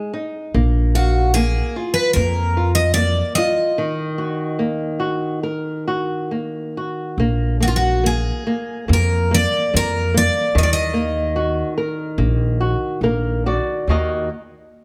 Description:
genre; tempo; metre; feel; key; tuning
fado-style ballad; 72 BPM; 4/4; uneven beats, rubato; Eb harmonic minor; A4 = 440 Hz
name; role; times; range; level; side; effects
picked twelve-string acoustic guitar; melody; 0.0-13.0 s; F4 to Eb5; -22 LUFS; equal; none
flamenco guitar; accompaniment; 0.0-14.3 s; Eb3 to Bb5; -25 LUFS; equal; none
upright bass; bass; 0.5-14.3 s; Bb1 to F2; -21 LUFS; equal; none
room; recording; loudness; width
light reverb; close, detailed microphones; -20 LUFS; mono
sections
0.0-7.2 A section; 7.2-13.9 B section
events
break 3.8-7.2; nylon-string guitar fill 12.6-13.9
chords
0.0 Ab5; 0.5 Bb5; 3.8 Ebm; 7.2 Bb5; 10.6 Ebm

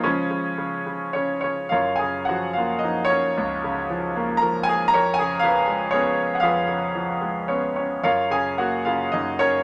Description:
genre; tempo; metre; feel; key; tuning
classical, lyrical solo piano; 104-122 BPM; 3/4; rubato; F# major; A4 = 441 Hz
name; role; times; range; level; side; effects
bright concert grand piano; solo; 0.0-9.6 s; C#2 to A#5; -23 LUFS; equal; none
room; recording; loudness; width
moderate studio reverb, RT60 0.6 s; none; -23 LUFS; mono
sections
0.0-1.7 A section; 1.7-9.6 B section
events
none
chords
0.0 Db; 1.7 F#maj7; 4.9 C#7/E#; 8.1 F#maj7

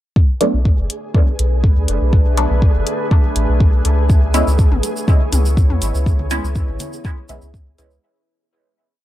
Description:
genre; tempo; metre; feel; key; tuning
dub techno; 122 BPM; 4/4; straight; B dorian; A4 = 440 Hz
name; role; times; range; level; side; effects
deep dark ambient pad; sustained chords; 0.9-8.0 s; A3 to C#5; -25 LUFS; equal; chorus, built-in reverb, sidechain pumping
electronic kick drum; drums; 0.2-7.6 s; none; -13 LUFS; equal; none
flickering grainy texture; texture; 0.6-8.0 s; G#4; -30 LUFS; right 3 dB; built-in reverb, sidechain pumping
filtered dub chord stab; stabs; 0.4-8.0 s; F#3 to E4; -22 LUFS; equal; phaser, sidechain pumping, dub echo
electronic hi-hat; drums; 0.4-7.9 s; none; -24 LUFS; left 1 dB; none
soft dub sub bass; bass; 0.5-8.0 s; F#1 to E2; -17 LUFS; equal; sidechain pumping
tube shaker; percussion; 4.1-8.0 s; none; -32 LUFS; right 3 dB; none
electronic toms and congas; percussion; 4.7-7.4 s; none; -29 LUFS; left 5 dB; overdrive, sidechain pumping on toms, sidechain pumping on perc, dub echo
room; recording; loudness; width
little or no reverb; dark, warm production; -13 LUFS; side -14 dB against mid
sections
0.2-8.0 groove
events
fade-out 5.4-8.0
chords
0.2 Bm7; 4.1 C#m7

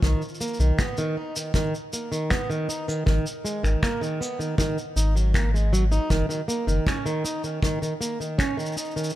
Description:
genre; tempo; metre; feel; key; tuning
folktronica; 79 BPM; 4/4; straight; unclear; A4 = 442 Hz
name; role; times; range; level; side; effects
fingerpicked plugged-in swing-style acoustic guitar; arpeggios; 0.0-9.1 s; D#3 to D#4; -27 LUFS; right 1 dB; ping-pong delay
warm sub bass; bass; 0.0-6.8 s; F#1 to B1; -21 LUFS; equal; none
cabasa and finger snaps; drums; 0.0-9.1 s; none; -33 LUFS; equal; none
kick drum; drums; 0.0-8.5 s; none; -25 LUFS; equal; none
room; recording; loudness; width
small room ambience; none; -22 LUFS; side -14 dB against mid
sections
0.0-9.2 A section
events
none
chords
0.0 B; 3.1 G#5; 6.1 N.C.

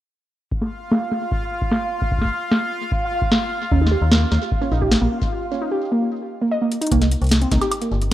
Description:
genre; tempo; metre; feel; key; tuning
IDM; 150 BPM; 4/4; straight; unclear; A4 = 441 Hz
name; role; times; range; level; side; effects
electronic kick drum; drums; 0.5-7.6 s; none; -24 LUFS; equal; small room ambience
bubbling stepped-filter texture; texture; 0.5-5.3 s; F4 to F5; -26 LUFS; right 1 dB; chorus, built-in reverb
booming analog drum machine; drums; 0.6-8.1 s; hi-hat, snare drum, woodblock; -20 LUFS; equal; low-pass filter on snare, small room ambience, low-pass filter on hats, low-pass filter on perc, digital delay
warbly dusty pluck; arpeggios; 3.7-7.9 s; Bb3 to Eb5; -22 LUFS; right 2 dB; chorus, phaser, tape echo
metallic FM bass; bass; 3.7-8.1 s; G1 to Eb2; -18 LUFS; equal; none
room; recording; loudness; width
light reverb, digital ambience; rough home demo mix; -18 LUFS; side -13 dB against mid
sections
0.5-6.9 A section; 6.9-8.1 B section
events
filter sweep on drum 0.5-6.9; break 5.3-6.9; drum fill 6.7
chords
0.5 N.C.; 3.7 Eb5; 6.9 C5

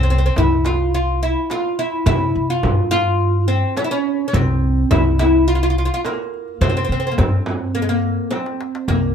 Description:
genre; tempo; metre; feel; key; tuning
Arabic maqam ensemble; 106 BPM; 4/4; straight; C maqam hijaz; A4 = 440 Hz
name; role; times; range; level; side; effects
oud; melody; 0.0-9.1 s; Ab3 to F4; -19 LUFS; equal; plate reverb
upright bass; bass; 0.0-9.1 s; C2 to C3; -19 LUFS; equal; none
darbuka; percussion; 0.2-9.0 s; none; -24 LUFS; left 1 dB; none
frame drum; percussion; 0.4-9.0 s; none; -24 LUFS; right 2 dB; none
room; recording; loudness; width
light reverb; none; -16 LUFS; side -7 dB against mid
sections
0.0-8.9 A section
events
drum fill 8.3-8.9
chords
none

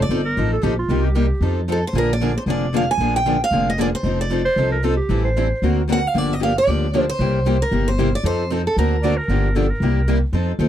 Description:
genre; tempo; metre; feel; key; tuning
acoustic string swing (jazz manouche); 228 BPM; 4/4; swing 56% on 8ths; F mixolydian; A4 = 440 Hz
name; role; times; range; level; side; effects
picked steel-string acoustic guitar; melody; 0.0-9.3 s; A4 to Ab5; -22 LUFS; right 2 dB; none
picked steel-string acoustic guitar; accompaniment; 0.0-10.7 s; C3 to A#4; -24 LUFS; left 11 dB; none
picked steel-string acoustic guitar; accompaniment; 0.0-10.7 s; C3 to A#4; -25 LUFS; right 6 dB; none
upright bass; bass; 0.0-10.7 s; F1 to F2; -20 LUFS; equal; none
clear clarinet; second line; 0.3-1.6, 4.4-5.7, 9.0-10.2 s; F4 to D5; -24 LUFS; right 2 dB; none
room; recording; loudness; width
little or no reverb; dry, close 1970s-style studio recording; -17 LUFS; side -11 dB against mid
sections
0.0-10.3 A section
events
none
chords
0.0 F7; 0.9 Cm7; 1.4 F7; 1.9 Bb7; 4.0 F7; 5.1 Am7; 5.6 Daug7; 6.1 Gm7; 7.2 C7; 8.2 F7; 8.8 Daug7; 9.3 Gm7; 9.8 C7

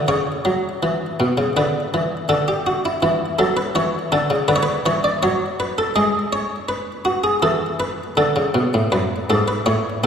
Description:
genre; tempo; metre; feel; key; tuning
classical, baroque-style two-part invention for harpsichord; 81 BPM; 4/4; straight; unclear; A4 = 441 Hz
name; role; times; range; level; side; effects
buff-stop harpsichord; solo; 0.0-10.1 s; F#2 to D5; -17 LUFS; equal; none
room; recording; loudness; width
wet concert hall reverb, RT60 2.3 s; heard from further back in the room; -17 LUFS; side -7 dB against mid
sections
0.0-8.9 A section; 8.9-10.1 B section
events
none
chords
0.1 Bsus24; 1.6 D5; 3.0 A/E; 4.5 Bm/D; 6.0 G#madd11; 7.4 A/E; 8.9 F#m

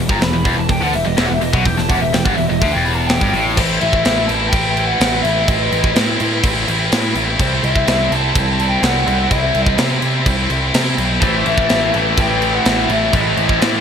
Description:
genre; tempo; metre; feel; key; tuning
heavy metal; 126 BPM; 4/4; straight; unclear; A4 = 440 Hz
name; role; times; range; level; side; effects
rich studio string section; sustained chords; 0.0-13.8 s; C3 to C5; -29 LUFS; left 3 dB; none
heavy high-gain guitar; riff; 0.0-13.8 s; E2 to E4; -19 LUFS; left 2 dB; distortion
tight distorted guitar; riff; 0.0-3.6, 11.2-13.8 s; E2 to A3; -20 LUFS; left 1 dB; distortion
fuzz picked electric bass; bass; 0.0-13.8 s; E1 to C3; -20 LUFS; right 1 dB; overdrive
bluesy overdriven lead guitar; melody; 0.1-13.6 s; C5 to B5; -21 LUFS; left 1 dB; distortion, plate reverb
tight metal drum kit; drums; 0.1-13.7 s; crash cymbal, hi-hat, kick drum, snare drum; -19 LUFS; right 1 dB; none
room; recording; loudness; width
light reverb; none; -13 LUFS; side -7 dB against mid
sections
0.0-3.6 A section; 3.6-13.8 B section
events
lead electric guitar solo 0.0-3.6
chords
0.0 Em; 3.6 Am; 7.4 C; 11.2 Am

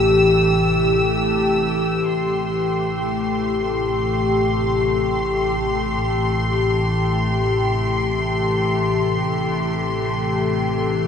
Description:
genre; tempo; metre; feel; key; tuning
ambient; free time; none; none; A minor; A4 = 438 Hz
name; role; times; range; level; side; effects
evolving wavetable pad; sustained chords; 0.0-11.1 s; C3 to A4; -19 LUFS; left 2 dB; chorus, built-in reverb
dark symphonic double bass section; bass; 0.0-11.1 s; A1; -26 LUFS; equal; none
clear studio violin section; texture; 0.0-11.1 s; C6 to E6; -26 LUFS; left 1 dB; none
room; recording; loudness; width
wet huge ambient reverb, RT60 8.6 s; studio reverb; -18 LUFS; side -7 dB against mid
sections
0.0-2.1 A section; 2.1-11.1 B section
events
none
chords
0.0 Am7

